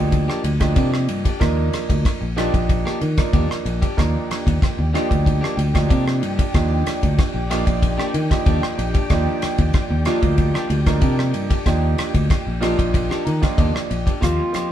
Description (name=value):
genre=electric jazz fusion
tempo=94 BPM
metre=4/4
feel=straight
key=Eb major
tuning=A4 = 440 Hz
part: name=clear grand piano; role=accompaniment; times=0.0-14.7 s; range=F3 to Bb5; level=-25 LUFS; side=right 3 dB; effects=none
part: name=fingered electric bass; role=bass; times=0.0-14.6 s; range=Bb1 to Eb3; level=-21 LUFS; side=equal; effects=none
part: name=clean electric guitar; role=stabs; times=0.1-14.7 s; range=F3 to G4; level=-30 LUFS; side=left 3 dB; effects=none
part: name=damped 70s drum kit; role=drums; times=0.1-14.7 s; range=hi-hat, kick drum, ride cymbal, rim click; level=-21 LUFS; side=equal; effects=none
part: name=string machine, cellos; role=sustained chords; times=4.0-14.2 s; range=D5 to G5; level=-31 LUFS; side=equal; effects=ensemble chorus
part: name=trumpet with bucket mute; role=melody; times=14.2-14.7 s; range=F4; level=-22 LUFS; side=equal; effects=none
room=moderate studio reverb, RT60 0.6 s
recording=band playing live in one room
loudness=-17 LUFS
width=side -11 dB against mid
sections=0.0-14.2 A section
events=grand piano fill 12.9-14.2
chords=0.0 Ebmaj7